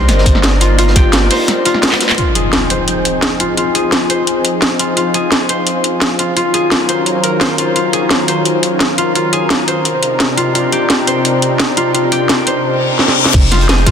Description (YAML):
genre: liquid drum and bass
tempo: 172 BPM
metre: 4/4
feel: straight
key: F minor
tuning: A4 = 440 Hz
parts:
  - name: lush unison pad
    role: sustained chords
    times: 0.0-13.9 s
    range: C3 to G5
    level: -18 LUFS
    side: left 1 dB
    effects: chorus, sidechain pumping
  - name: concert harp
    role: arpeggios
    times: 0.0-13.9 s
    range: F4 to C5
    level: -16 LUFS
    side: left 1 dB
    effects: low-pass filter, ping-pong delay
  - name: long sustained 808-style bass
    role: bass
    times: 0.0-1.3, 13.3-13.9 s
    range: F1 to G1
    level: -13 LUFS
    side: equal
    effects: none
  - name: crunchy breakbeat drum kit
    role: drums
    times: 0.1-2.2, 13.3-13.9 s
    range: hi-hat, snare drum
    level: -22 LUFS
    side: equal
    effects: high-pass filter on hats, high-pass filter on snare, high-pass filter on room
  - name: drum and bass drum kit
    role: drums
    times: 0.1-13.9 s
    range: crash cymbal, handclaps, hi-hat, snare drum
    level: -15 LUFS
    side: equal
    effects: none
  - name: electronic kick drum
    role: drums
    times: 0.3-1.0, 13.3-13.9 s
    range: none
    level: -10 LUFS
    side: equal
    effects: none
  - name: impact and reverse cymbal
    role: sound effects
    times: 2.2-3.6, 12.8-13.3 s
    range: none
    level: -18 LUFS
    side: left 2 dB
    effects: none
room: moderate huge ambient reverb, RT60 5.3 s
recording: dense, heavily limited modern master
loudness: -11 LUFS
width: side -7 dB against mid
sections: 0.0-2.2 A section; 2.2-13.3 B section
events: drum fill 1.9, 13.0-13.3; impact 2.2-3.6; filter sweep on analog synth pad 2.2-13.3; reverse cymbal 12.8-13.3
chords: 0.0 Cm9; 2.2 Fm9; 6.4 Ebm9; 9.9 Cm9; 13.3 Fm9